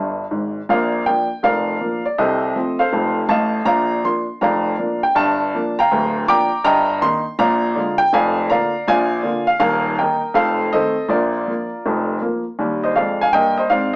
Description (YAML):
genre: jazz, stride piano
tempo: 161 BPM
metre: 4/4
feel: swing 66% on 8ths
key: Bb major, Eb major from 6.7 s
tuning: A4 = 441 Hz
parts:
  - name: warm upright piano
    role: solo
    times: 0.0-14.0 s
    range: D1 to D6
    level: -16 LUFS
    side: equal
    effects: none
room: moderate studio reverb, RT60 0.6 s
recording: worn, warbling old tape, cassette tape, warbly pitch drift, small speaker sound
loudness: -16 LUFS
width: side -26 dB against mid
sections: 0.7-12.6 A section; 12.6-14.0 B section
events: upright piano fill 0.0-0.7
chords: 0.0 Eb; 0.7 Bb; 2.2 F7/C; 3.7 Bb; 5.2 Gm7; 6.7 Eb/G; 7.4 Bb7; 8.1 Bb7/F; 8.9 Bb7; 9.6 Eb; 10.4 F7; 11.1 Bb; 12.6 Eb